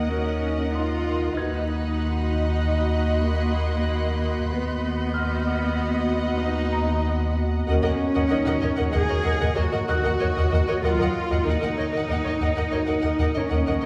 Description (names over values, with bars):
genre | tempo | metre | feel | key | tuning
cinematic | 95 BPM | 5/4 | straight | Eb minor | A4 = 440 Hz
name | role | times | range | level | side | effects
warm chamber violin section | melody | 0.0-13.9 s | Eb5 to Gb5 | -38 LUFS | equal | none
warm chamber viola section | accompaniment | 0.0-13.9 s | B3 to Eb5 | -32 LUFS | equal | none
ethereal airy pad | sustained chords | 0.0-13.9 s | B3 to Eb5 | -34 LUFS | equal | ensemble chorus, built-in reverb
dark chamber double bass section | bass | 0.0-13.9 s | Eb2 | -27 LUFS | equal | none
warm chamber cello section | bass | 0.0-13.9 s | Bb3 to Ab4 | -30 LUFS | equal | none
dark grand piano | texture | 0.0-13.9 s | Eb4 to Ab6 | -37 LUFS | equal | none
dark French horn section | sustained chords | 0.1-12.9 s | Gb3 to D#5 | -36 LUFS | equal | none
warm chamber violin section | texture | 1.4-7.3 s | B5 to F#6 | -40 LUFS | equal | none
room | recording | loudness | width
wet scoring stage reverb, RT60 1.4 s | heard from further back in the room, vinyl crackle, lossy compression artefacts | -24 LUFS | mono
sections
0.0-13.9 A section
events
none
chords
0.0 Ebm7; 1.4 B/D#; 7.7 Ebm7